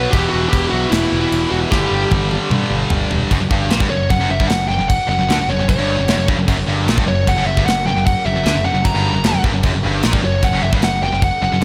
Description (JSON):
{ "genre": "heavy metal", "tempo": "151 BPM", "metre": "4/4", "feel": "straight", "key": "F# phrygian dominant", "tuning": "A4 = 440 Hz", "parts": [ { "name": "high-gain lead guitar", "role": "melody", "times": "0.0-11.6 s", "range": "E4 to A#5", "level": "-22 LUFS", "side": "equal", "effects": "distortion" }, { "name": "rich studio string section", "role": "sustained chords", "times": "0.0-11.6 s", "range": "C#3 to B5", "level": "-34 LUFS", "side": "equal", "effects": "none" }, { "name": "distorted electric guitar", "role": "riff", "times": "0.0-11.6 s", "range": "E2 to B3", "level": "-27 LUFS", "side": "equal", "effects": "overdrive" }, { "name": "heavy high-gain guitar", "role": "riff", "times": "0.0-11.6 s", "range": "E2 to B3", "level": "-26 LUFS", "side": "equal", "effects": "distortion" }, { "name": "heavy high-gain guitar", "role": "riff", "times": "0.0-11.6 s", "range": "E2 to B3", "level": "-27 LUFS", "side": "equal", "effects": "distortion" }, { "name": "growling picked electric bass", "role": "bass", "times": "0.0-11.6 s", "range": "E1 to G2", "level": "-23 LUFS", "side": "equal", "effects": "overdrive" }, { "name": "tight metal drum kit", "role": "drums", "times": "0.1-11.6 s", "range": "crash cymbal, kick drum, snare drum, toms", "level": "-22 LUFS", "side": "equal", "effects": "none" } ], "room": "moderate lush hall reverb, RT60 1.9 s, studio reverb", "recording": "big arena sound", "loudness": "-16 LUFS", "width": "mono", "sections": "0.0-3.3 A section; 3.3-11.6 B section", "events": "half time 0.0-3.3; drum fill 1.7-3.3", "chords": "0.1 Em; 1.7 G; 3.3 F#", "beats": "| 0.13 0.53 0.92 1.32 | 1.72 2.12 2.51 2.91 | 3.31 3.70 4.10 4.49 | 4.89 5.29 5.68 6.08 | 6.48 6.87 7.27 7.67 | 8.06 8.46 8.85 9.25 | 9.65 10.04 10.44 10.83 | 11.23 11.63" }